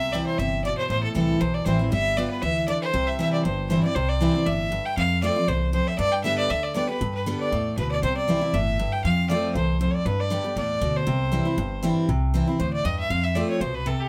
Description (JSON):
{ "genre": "bluegrass", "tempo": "236 BPM", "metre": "4/4", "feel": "straight", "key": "C major", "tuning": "A4 = 442 Hz", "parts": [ { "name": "clear fiddle", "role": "melody", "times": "0.0-14.1 s", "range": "G4 to G5", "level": "-28 LUFS", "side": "equal", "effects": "none" }, { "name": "picked steel-string acoustic guitar", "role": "accompaniment", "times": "0.0-14.1 s", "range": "E2 to G4", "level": "-28 LUFS", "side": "equal", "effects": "none" }, { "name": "upright bass", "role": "bass", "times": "0.0-13.9 s", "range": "G1 to G2", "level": "-30 LUFS", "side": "equal", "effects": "none" } ], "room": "moderate studio reverb, RT60 0.5 s", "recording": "none", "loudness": "-24 LUFS", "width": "mono", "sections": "0.0-4.0 A section; 4.0-12.1 B section; 12.1-14.1 C section", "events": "fiddle solo 12.1-14.1", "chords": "0.0 C; 0.9 Am7; 1.9 G7; 2.9 C; 5.0 F; 6.0 G; 8.0 C; 9.0 F; 10.1 G; 11.1 C; 13.1 F" }